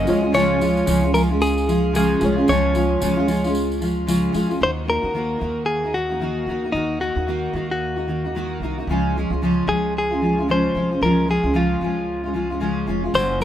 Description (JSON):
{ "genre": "acoustic pop", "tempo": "112 BPM", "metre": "4/4", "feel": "swing 60% on 16ths", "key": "Db major", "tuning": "A4 = 441 Hz", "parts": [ { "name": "direct-recorded clean electric guitar", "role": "melody", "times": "0.0-13.4 s", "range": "Eb4 to Eb5", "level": "-22 LUFS", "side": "left 2 dB", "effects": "none" }, { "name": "fingerpicked steel-string acoustic guitar", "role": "accompaniment", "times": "0.0-13.4 s", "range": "Gb2 to Gb4", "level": "-21 LUFS", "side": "equal", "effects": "double-tracked left and right" }, { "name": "warm upright piano", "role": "accompaniment", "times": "0.0-4.6 s", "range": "Ab3 to Db5", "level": "-30 LUFS", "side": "left 1 dB", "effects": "none" }, { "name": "upright bass", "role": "bass", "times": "0.0-13.4 s", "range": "F1 to Eb2", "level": "-28 LUFS", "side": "right 1 dB", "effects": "none" }, { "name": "tambourine", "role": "percussion", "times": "0.1-4.6, 13.1-13.4 s", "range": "none", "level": "-37 LUFS", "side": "right 2 dB", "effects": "none" } ], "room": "light reverb, studio ambience", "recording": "rough home demo mix", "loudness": "-18 LUFS", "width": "side -10 dB against mid", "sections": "0.0-4.6 A section; 4.6-13.4 B section", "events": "none", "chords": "0.1 Db; 4.6 Ebm; 8.9 Db" }